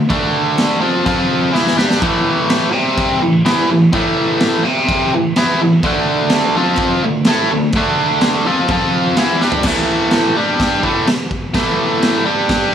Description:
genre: garage rock duo or trio.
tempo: 126 BPM.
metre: 4/4.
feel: straight.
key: A minor.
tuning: A4 = 444 Hz.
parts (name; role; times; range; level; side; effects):
biting overdriven guitar; riff; 0.0-12.7 s; A2 to A4; -14 LUFS; equal; none.
raw garage drum kit; drums; 0.1-12.6 s; crash cymbal, kick drum, snare drum, toms; -18 LUFS; equal; none.
room: light reverb, small room ambience.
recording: studio reverb.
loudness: -12 LUFS.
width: side -9 dB against mid.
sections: 0.0-9.6 A section; 9.6-12.7 B section.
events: drum fill 1.5-2.0, 9.4.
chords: 0.0 D5; 1.1 F5; 1.5 Em7; 2.0 A5; 2.7 C5; 3.2 A5; 4.6 C5; 5.1 A5; 5.8 D5; 6.6 F5; 7.0 D5; 8.7 F5; 9.2 Em7; 9.6 A5; 10.4 G5; 10.8 A5; 12.3 G5.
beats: | 0.10 0.58 1.06 1.54 | 2.02 2.50 2.98 3.45 | 3.93 4.41 4.89 5.36 | 5.84 6.32 6.79 7.27 | 7.75 8.22 8.70 9.17 | 9.65 10.12 10.60 11.07 | 11.54 12.02 12.49.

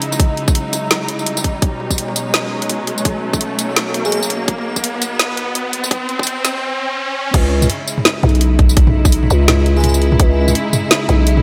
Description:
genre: half-time drum and bass.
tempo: 168 BPM.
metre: 4/4.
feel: swing 58% on 16ths, half-time.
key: C# minor.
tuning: A4 = 439 Hz.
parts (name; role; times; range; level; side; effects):
warm studio string section; sustained chords; 0.0-11.4 s; B2 to E4; -25 LUFS; equal; vintage 12-bit sampler grit, sidechain pumping.
drum and bass drum kit; drums; 0.0-11.4 s; crash cymbal, hi-hat, snare drum, tambourine, toms; -20 LUFS; equal; high-pass filter on hats, high-pass filter on toms, high-pass filter on perc, high-pass filter on snare, high-pass filter on cymbals, high-pass filter on room.
riser; sound effects; 0.0-7.3 s; none; -26 LUFS; equal; none.
electronic kick drum; drums; 0.2-10.3 s; none; -16 LUFS; equal; none.
airy dreamy lead; melody; 4.0-4.2, 9.8-9.9 s; G#4; -27 LUFS; equal; chorus, digital delay.
growling 808-style bass; bass; 7.3-11.4 s; B1 to C#2; -15 LUFS; equal; none.
room: light reverb.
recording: high-pass filter.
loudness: -16 LUFS.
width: mono.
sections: 0.0-7.3 A section; 7.3-11.4 B section.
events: build-up 0.0-7.3; riser 0.0-7.3; drop 7.3-11.4.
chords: 0.0 C#m; 1.6 B; 7.3 C#m.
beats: | 0.20 0.55 0.91 1.27 | 1.62 1.98 2.34 2.70 | 3.05 3.41 3.77 4.12 | 4.48 4.84 5.20 5.55 | 5.91 6.27 6.62 6.98 | 7.34 7.70 8.05 8.41 | 8.77 9.12 9.48 9.84 | 10.20 10.55 10.91 11.27.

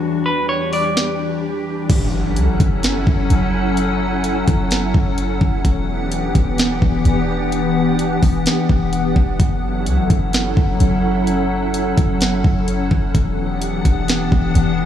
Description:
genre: hip hop, atmospheric cloud-rap.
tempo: 128 BPM.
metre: 4/4.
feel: half-time.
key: unclear.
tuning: A4 = 440 Hz.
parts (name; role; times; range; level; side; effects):
glassy FM pad; sustained chords; 0.0-14.9 s; E2 to F#5; -19 LUFS; left 1 dB; ensemble chorus, built-in reverb, sidechain pumping, low-pass filter.
clean electric guitar; melody; 0.3-1.4 s; B4 to D5; -21 LUFS; equal; low-pass filter, digital delay.
trap drum kit; drums; 0.7-14.7 s; crash cymbal, hi-hat, kick drum, snare drum; -19 LUFS; equal; none.
clean 808-style bass; bass; 1.9-14.9 s; E1 to C#2; -20 LUFS; equal; none.
impact; sound effects; 1.9-3.8 s; none; -27 LUFS; right 1 dB; none.
room: light reverb.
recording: studio reverb.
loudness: -15 LUFS.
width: side -10 dB against mid.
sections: 0.0-1.9 A section; 1.9-14.9 B section.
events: filter sweep 0.0-1.9; impact 1.9-3.8.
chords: 0.0 Em7; 1.9 F#m7; 5.6 Em9; 9.4 F#m7; 13.1 Em9.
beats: | 0.02 0.49 0.96 1.43 | 1.90 2.37 2.83 3.30 | 3.77 4.24 4.71 5.18 | 5.65 6.12 6.58 7.05 | 7.52 7.99 8.46 8.93 | 9.40 9.87 10.33 10.80 | 11.27 11.74 12.21 12.68 | 13.15 13.62 14.08 14.55.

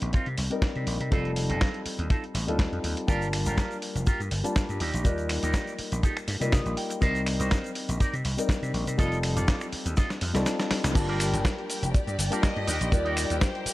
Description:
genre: nu-disco, nu disco.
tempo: 122 BPM.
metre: 4/4.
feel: swing 54% on 16ths.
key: G minor.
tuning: A4 = 438 Hz.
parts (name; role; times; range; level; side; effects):
dark grand piano; accompaniment; 0.0-13.7 s; G3 to A5; -32 LUFS; left 2 dB; tape echo.
vintage slap bass; bass; 0.0-13.7 s; F1 to C3; -29 LUFS; equal; none.
dusty soul sampler-style drum kit; drums; 0.0-13.7 s; cabasa, crash cymbal, finger snaps, hi-hat, snare drum; -31 LUFS; equal; none.
electric guitar with an envelope filter; riff; 0.1-13.7 s; C4 to G5; -34 LUFS; right 2 dB; lush chorus, low-pass filter, tape echo.
kick drum; drums; 0.1-13.5 s; none; -24 LUFS; equal; none.
tube shaker; percussion; 3.1-10.9 s; none; -43 LUFS; left 3 dB; none.
rich studio string section; sustained chords; 11.0-13.7 s; G4 to G5; -37 LUFS; left 3 dB; sidechain pumping.
warm chamber violin section; melody; 11.2-13.7 s; Bb4 to Eb5; -34 LUFS; right 1 dB; none.
room: studio ambience.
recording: dry, gritty hardware recording.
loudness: -24 LUFS.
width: side -17 dB against mid.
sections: 0.0-11.0 A section; 11.0-13.7 B section.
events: clean electric guitar fill 6.3-7.0; drum fill 10.0-11.0; kick drops out 10.5-11.0; band accent 10.8; drop 11.0-13.7.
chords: 0.0 Ebmaj7; 1.1 F7; 3.1 Gm7; 4.8 Ebmaj7; 7.0 Cm7; 9.0 F7; 11.0 Gm7; 12.7 Ebmaj7.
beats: 0.13 0.62 | 1.12 1.61 2.10 2.59 | 3.08 3.58 4.07 4.56 | 5.05 5.54 6.03 6.53 | 7.02 7.51 8.00 8.49 | 8.98 9.48 9.97 10.46 | 10.95 11.44 11.94 12.43 | 12.92 13.41.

